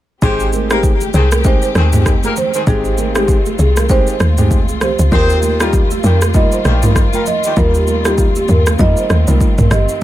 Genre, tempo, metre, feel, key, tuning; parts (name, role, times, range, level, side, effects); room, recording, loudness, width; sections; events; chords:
afrobeats; 98 BPM; 4/4; swing 58% on 16ths; Ab major; A4 = 441 Hz
marimba with medium mallets; melody; 0.2-9.9 s; G4 to Eb5; -19 LUFS; right 1 dB; digital delay
dark horn section; second line; 0.2-7.5 s; Eb3 to C5; -22 LUFS; left 3 dB; digital delay
warm concert grand piano; accompaniment; 0.2-9.5 s; G3 to G4; -22 LUFS; left 1 dB
warm studio string section; sustained chords; 0.2-10.0 s; Eb3 to G4; -25 LUFS; left 4 dB
woody log drum bass; bass; 0.2-9.9 s; G1 to F2; -14 LUFS; equal
afro-pop drum kit; drums; 0.2-10.0 s; kick drum, rim click, shaker, toms; -15 LUFS; equal; overdrive
congas; percussion; 0.2-9.9 s; -25 LUFS; right 10 dB
balafon; riff; 0.4-9.8 s; G4 to Eb5; -25 LUFS; right 4 dB; digital delay
small room ambience; -11 LUFS; side -14 dB against mid
0.2-10.0 A section
0.2 Abmaj7; 5.1 Ebadd9